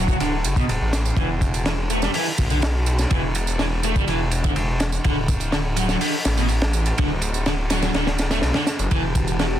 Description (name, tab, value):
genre	breakbeat, breaks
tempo	124 BPM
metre	4/4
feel	straight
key	E minor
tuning	A4 = 441 Hz
part	overdriven electric guitar	riff	0.0-9.4 s	B2 to A3	-26 LUFS	equal	low-pass filter, ping-pong delay
part	phased detuned saw bass	bass	0.0-9.6 s	D1 to B1	-23 LUFS	equal	phaser
part	crunchy breakbeat drum kit	drums	0.1-9.5 s	hi-hat, kick drum, ride cymbal, snare drum	-23 LUFS	equal	none
part	tambourine	drums	0.1-9.5 s	none	-32 LUFS	right 10 dB	none
part	phased analog pad	sustained chords	8.9-9.6 s	E3 to G4	-28 LUFS	left 1 dB	phaser, chorus, sidechain pumping
room	studio reverb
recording	dense, heavily limited modern master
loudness	-19 LUFS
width	side -11 dB against mid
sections	0.0-9.6 A section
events	none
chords	0.0 D; 1.2 E5; 5.0 D5; 8.9 Emadd9